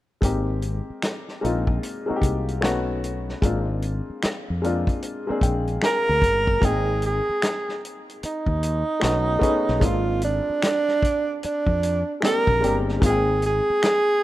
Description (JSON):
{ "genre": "R&B, neo-soul", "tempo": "75 BPM", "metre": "4/4", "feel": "swing 63% on 16ths", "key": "Ab lydian", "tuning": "A4 = 440 Hz", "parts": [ { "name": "clear upright piano", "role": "accompaniment", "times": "0.2-14.2 s", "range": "Ab3 to Bb5", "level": "-28 LUFS", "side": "left 2 dB", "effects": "none" }, { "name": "fretless electric bass", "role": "bass", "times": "0.2-13.7 s", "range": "G1 to F2", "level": "-25 LUFS", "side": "equal", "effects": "none" }, { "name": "warm soul drum kit", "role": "drums", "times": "0.2-14.1 s", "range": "finger snaps, hi-hat, kick drum, snare drum", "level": "-24 LUFS", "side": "equal", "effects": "none" }, { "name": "breathy tenor saxophone", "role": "melody", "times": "5.9-14.2 s", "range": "D4 to Bb4", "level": "-22 LUFS", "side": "right 2 dB", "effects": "none" } ], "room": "small room reverb", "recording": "rough home demo mix", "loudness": "-20 LUFS", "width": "side -15 dB against mid", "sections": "0.2-6.6 A section; 6.6-14.2 B section", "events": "upright piano fill 5.0-6.6", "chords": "0.2 Abmaj7; 2.6 B9; 3.4 Bb9/Ab; 6.6 Abmaj7; 9.0 B9; 9.8 Bb9/Ab; 13.0 Abmaj7" }